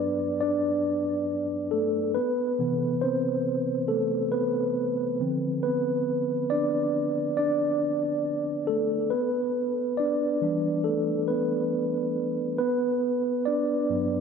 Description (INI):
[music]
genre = R&B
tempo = 69 BPM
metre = 4/4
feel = swing 54% on 16ths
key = G major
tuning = A4 = 441 Hz
[part]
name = mellow tine electric piano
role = solo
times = 0.0-14.2 s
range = G2 to D5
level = -24 LUFS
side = equal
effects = medium stereo tremolo, diffuse ambient delay
[sound]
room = wet plate reverb, RT60 3.4 s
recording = dreamy mix soaked in reverb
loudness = -24 LUFS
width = side -6 dB against mid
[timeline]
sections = 0.0-14.2 A section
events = tine electric piano solo 0.0-14.2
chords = 0.0 Gmaj9; 2.2 Cmaj7; 5.2 Dm7; 9.1 Em7; 12.6 Gmaj7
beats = 0.42 1.29 | 2.16 3.02 3.90 4.76 | 5.63 6.50 7.37 8.24 | 9.11 9.98 10.85 11.72 | 12.59 13.46